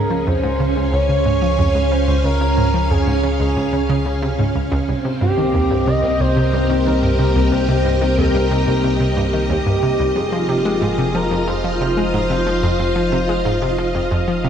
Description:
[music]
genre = ambient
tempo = 91 BPM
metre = 4/4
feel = straight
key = F minor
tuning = A4 = 440 Hz
[part]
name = expressive portamento lead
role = melody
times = 0.0-14.5 s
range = G4 to Eb5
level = -22 LUFS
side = equal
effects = lush chorus, analog delay
[part]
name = string machine, full ensemble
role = sustained chords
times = 0.0-14.5 s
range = C4 to Ab5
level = -20 LUFS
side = equal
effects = ensemble chorus
[part]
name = warm sub bass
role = bass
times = 0.0-14.5 s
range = F1 to Db2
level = -22 LUFS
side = equal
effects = none
[part]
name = analog pluck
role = riff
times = 0.1-14.5 s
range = C2 to Ab3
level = -20 LUFS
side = equal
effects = chorus, analog delay
[sound]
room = wet cathedral reverb, RT60 5.5 s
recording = in a vast, echoing space, cassette tape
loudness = -15 LUFS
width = side -8 dB against mid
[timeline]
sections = 0.0-14.5 A section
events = none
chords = 0.0 Db; 4.9 Cm7; 10.2 Fm7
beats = 0.27 0.93 1.59 | 2.25 2.90 3.56 4.22 | 4.88 5.54 6.20 6.86 | 7.52 8.18 8.84 9.50 | 10.16 10.82 11.48 12.14 | 12.79 13.46 14.11

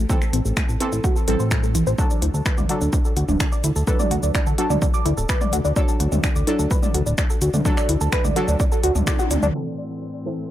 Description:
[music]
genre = melodic techno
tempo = 127 BPM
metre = 4/4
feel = straight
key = unclear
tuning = A4 = 441 Hz
[part]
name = tight sequenced synth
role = arpeggios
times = 0.0-10.5 s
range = E3 to D5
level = -25 LUFS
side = equal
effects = chorus, phaser, sidechain pumping, tape echo
[part]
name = synth brass stab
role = stabs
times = 0.0-10.5 s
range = E3 to A4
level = -28 LUFS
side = equal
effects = chorus, phaser, sidechain pumping, tape echo
[part]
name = fat analog bass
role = bass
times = 0.0-9.5 s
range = D1 to A2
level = -21 LUFS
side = equal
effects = sidechain pumping
[part]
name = electronic kick drum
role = drums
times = 0.1-9.2 s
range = none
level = -22 LUFS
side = equal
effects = none
[part]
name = techno drum kit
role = drums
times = 0.1-9.5 s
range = finger snaps, hi-hat, shaker, toms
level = -26 LUFS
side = equal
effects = low-pass filter on perc, low-pass filter on hats, low-pass filter on snare, low-pass filter on toms, low-pass filter on room
[part]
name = muted chamber string section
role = sustained chords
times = 9.5-10.5 s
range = A2 to C4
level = -33 LUFS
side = left 1 dB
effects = vintage 12-bit sampler grit, sidechain pumping
[part]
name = bowed-like drone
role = drone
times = 9.9-10.5 s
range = A2 to E3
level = -41 LUFS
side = equal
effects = none
[sound]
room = digital ambience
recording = dry, gritty hardware recording, low-pass filter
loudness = -18 LUFS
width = side -12 dB against mid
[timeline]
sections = 0.0-9.5 A section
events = filter sweep on synth arpeggio sound 0.0-9.5; drum fill 9.1-9.5; band accent 9.1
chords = 0.0 Am; 2.0 D; 9.5 Am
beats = | 0.10 0.57 1.04 1.51 | 1.99 2.46 2.93 3.40 | 3.88 4.35 4.82 5.29 | 5.76 6.24 6.71 7.18 | 7.66 8.13 8.60 9.07 | 9.54 10.02 10.49

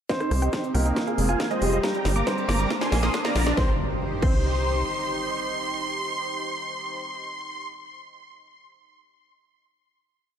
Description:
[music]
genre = uplifting trance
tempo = 138 BPM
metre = 4/4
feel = straight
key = C minor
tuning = A4 = 440 Hz
[part]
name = big supersaw lead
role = melody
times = 0.1-7.7 s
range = Ab4 to Eb6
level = -30 LUFS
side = right 1 dB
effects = phaser, sidechain pumping, low-pass filter, ping-pong delay
[part]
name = warm concert grand piano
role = second line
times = 0.1-7.7 s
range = G3 to C5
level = -31 LUFS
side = equal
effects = digital delay
[part]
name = wide unison pluck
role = second line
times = 0.1-7.7 s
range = Eb5 to Eb6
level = -37 LUFS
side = right 1 dB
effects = none
[part]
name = lush unison pad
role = sustained chords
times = 0.1-7.0 s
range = C4 to C5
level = -32 LUFS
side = equal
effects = chorus, phaser, sidechain pumping
[part]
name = liquid acid bass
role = arpeggios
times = 0.1-4.3 s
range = G3 to F4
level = -32 LUFS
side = right 3 dB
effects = chorus, sidechain pumping, ping-pong delay
[part]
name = electronic kick drum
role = drums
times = 0.1-4.4 s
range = none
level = -26 LUFS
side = equal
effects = overdrive, high-pass filter on kick
[part]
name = techno drum kit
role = drums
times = 0.1-4.4 s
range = crash cymbal, hi-hat, rim click, snare drum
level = -32 LUFS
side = left 1 dB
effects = overdrive, high-pass filter on snare, high-pass filter on hats, high-pass filter on cymbals
[part]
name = riser and impact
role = sound effects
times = 1.5-7.0 s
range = none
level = -34 LUFS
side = equal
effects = none
[part]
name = tight sequencer bass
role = bass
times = 0.3-4.8 s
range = F1 to C2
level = -24 LUFS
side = equal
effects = sidechain pumping
[sound]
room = light reverb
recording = dark, warm production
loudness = -23 LUFS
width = side -9 dB against mid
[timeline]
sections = 0.1-3.6 build; 3.6-7.1 final chord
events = build-up 0.1-3.6; drum fill 0.1-3.6; filter sweep on supersaw synth 0.1-3.6; filter sweep on acid bass 0.1-3.6; filter sweep on synth pluck 0.1-3.6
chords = 0.1 Cm; 1.0 Fm; 1.8 Gm; 2.7 Bb; 3.6 Cm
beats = | 0.10 0.53 0.96 1.40 | 1.83 2.27 2.70 3.14 | 3.57 4.01 4.44 4.88 | 5.31 5.75 6.18 6.62

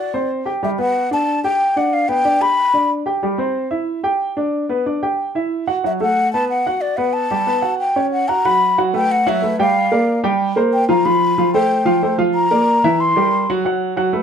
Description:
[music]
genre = jazz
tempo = 184 BPM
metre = 4/4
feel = straight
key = unclear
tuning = A4 = 440 Hz
[part]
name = breathy mellow concert flute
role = melody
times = 0.0-2.9, 5.9-13.5 s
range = D5 to C6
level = -17 LUFS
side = left 2 dB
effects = none
[part]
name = warm baby grand piano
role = accompaniment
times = 0.0-14.2 s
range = E3 to G5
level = -18 LUFS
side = right 1 dB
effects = none
[sound]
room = wet studio reverb, RT60 0.7 s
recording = dark, warm production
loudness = -15 LUFS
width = side -7 dB against mid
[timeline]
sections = 0.0-8.4 A section; 8.4-14.2 B section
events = none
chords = 0.0 D7; 0.6 Gmaj9; 1.9 G; 3.2 Cadd9; 4.5 Bm; 5.2 Emadd9; 5.8 F#madd11; 7.1 Gmaj9; 7.8 F#5; 8.4 B5; 9.7 Gm7; 10.4 C5; 11.0 Fadd9; 12.3 Bb; 13.0 C7; 13.6 Esus4 (rootless)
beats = 0.30 | 0.62 0.95 1.27 1.60 | 1.93 2.25 2.58 2.90 | 3.23 3.56 3.88 4.21 | 4.53 4.86 5.19 5.51 | 5.84 6.16 6.49 6.82 | 7.14 7.47 7.79 8.12 | 8.45 8.77 9.10 9.42 | 9.75 10.07 10.40 10.72 | 11.05 11.37 11.70 12.02 | 12.35 12.67 13.00 13.32 | 13.65 13.97

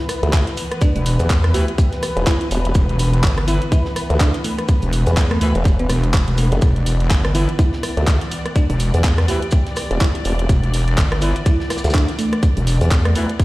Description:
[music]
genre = bass house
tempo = 124 BPM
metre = 4/4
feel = swing 58% on 16ths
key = E minor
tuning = A4 = 444 Hz
[part]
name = bell-like FM electric piano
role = melody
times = 0.0-13.2 s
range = A3 to G4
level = -27 LUFS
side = right 1 dB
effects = chorus, phaser, cassette tape, tape echo
[part]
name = muted studio string section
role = sustained chords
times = 0.0-13.4 s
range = E3 to D5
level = -27 LUFS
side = left 1 dB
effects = sidechain pumping
[part]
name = garage drum kit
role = drums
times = 0.1-13.4 s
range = handclaps, hi-hat, rim click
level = -26 LUFS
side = right 1 dB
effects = overdrive, studio reverb
[part]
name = tight metal drum kit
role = drums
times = 0.1-13.4 s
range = hi-hat, shaker, snare drum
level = -36 LUFS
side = equal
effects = none
[part]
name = formant-sweep wobble bass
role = bass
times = 0.2-12.9 s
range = E1 to E2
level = -18 LUFS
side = equal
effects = chorus, tube saturation, sidechain pumping
[part]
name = electronic kick drum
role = drums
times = 0.3-13.4 s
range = none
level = -16 LUFS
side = equal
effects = overdrive, studio reverb
[part]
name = wobble bass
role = bass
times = 1.0-13.3 s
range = E1 to E2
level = -17 LUFS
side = equal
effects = chorus, tube saturation, sidechain pumping
[part]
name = warm horn section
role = stabs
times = 1.5-13.3 s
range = E3 to B4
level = -31 LUFS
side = equal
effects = sidechain pumping, tape echo
[sound]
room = small room ambience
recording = played on a big sound system in a bare room, stone room reverb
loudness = -15 LUFS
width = side -19 dB against mid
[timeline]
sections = 0.0-13.4 A section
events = none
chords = 0.0 E5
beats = 0.33 | 0.81 1.30 1.78 2.27 | 2.75 3.23 3.72 4.20 | 4.69 5.17 5.65 6.14 | 6.62 7.11 7.59 8.07 | 8.56 9.04 9.53 10.01 | 10.49 10.98 11.46 11.95 | 12.43 12.91 13.40

